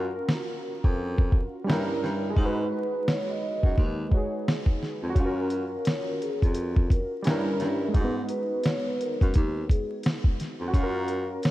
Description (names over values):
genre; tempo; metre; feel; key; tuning
lo-fi hip hop; 86 BPM; 4/4; swing 61% on 16ths; unclear; A4 = 443 Hz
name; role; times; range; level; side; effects
warm analog keys; accompaniment; 0.0-11.5 s; G3 to B4; -31 LUFS; right 1 dB; chorus, cassette tape, low-pass filter
warm baritone saxophone; bass; 0.0-11.3 s; D#2 to G#2; -30 LUFS; equal; none
dusty soul sampler-style drum kit; drums; 0.3-11.5 s; hi-hat, kick drum, snare drum; -24 LUFS; equal; none
vibraphone with soft mallets; melody; 2.7-11.5 s; G#4 to D#5; -33 LUFS; equal; low-pass filter, ping-pong delay
room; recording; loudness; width
light reverb; vinyl crackle; -24 LUFS; side -16 dB against mid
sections
0.0-11.5 A section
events
break 0.0-5.2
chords
0.0 F#maj7; 1.7 Gdim7; 2.4 G#m7; 5.2 F#maj7; 7.2 Gdim7; 7.9 G#m7; 10.7 F#maj7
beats
0.27 0.97 1.67 | 2.37 3.06 3.76 4.46 | 5.16 5.85 6.55 7.25 | 7.95 8.64 9.34 10.04 | 10.74 11.44